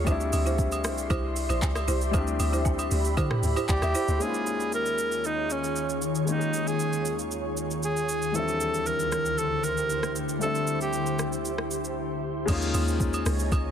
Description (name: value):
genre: amapiano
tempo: 116 BPM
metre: 4/4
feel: straight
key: unclear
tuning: A4 = 440 Hz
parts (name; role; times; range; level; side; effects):
- warm baby grand piano; accompaniment; 0.0-13.7 s; E3 to E5; -33 LUFS; left 5 dB; none
- glassy FM pad; sustained chords; 0.0-13.7 s; D2 to C6; -31 LUFS; left 1 dB; ensemble chorus, built-in reverb, sidechain pumping
- deep log drum bass; bass; 0.0-4.2, 12.5-13.7 s; Bb1 to D3; -27 LUFS; equal; none
- folk marimba with medium mallets; stabs; 0.1-4.0 s; E4 to C5; -34 LUFS; right 3 dB; tape echo
- smooth R&B drum kit; drums; 0.1-13.6 s; crash cymbal, handclaps, hi-hat, kick drum, rim click, shaker, toms; -31 LUFS; right 1 dB; overdrive
- agogo bells and woodblock; percussion; 0.1-3.9, 12.5-13.6 s; none; -37 LUFS; right 3 dB; none
- breathy alto saxophone; melody; 3.7-11.3 s; Db4 to Bb4; -29 LUFS; right 1 dB; tape echo
room: light reverb, small room ambience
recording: dense, heavily limited modern master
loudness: -24 LUFS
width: side -8 dB against mid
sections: 0.0-4.2 A section; 4.2-12.5 B section; 12.5-13.7 A section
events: drop 0.0-4.2, 12.5-13.7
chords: 0.1 D9sus4; 4.2 Eb9sus4; 8.3 D9sus4; 12.5 Eb9sus4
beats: | 0.07 0.59 1.11 1.62 | 2.14 2.66 3.17 3.69 | 4.21 4.73 5.24 5.76 | 6.28 6.79 7.31 7.83 | 8.35 8.86 9.38 9.90 | 10.42 10.93 11.45 11.97 | 12.48 13.00 13.52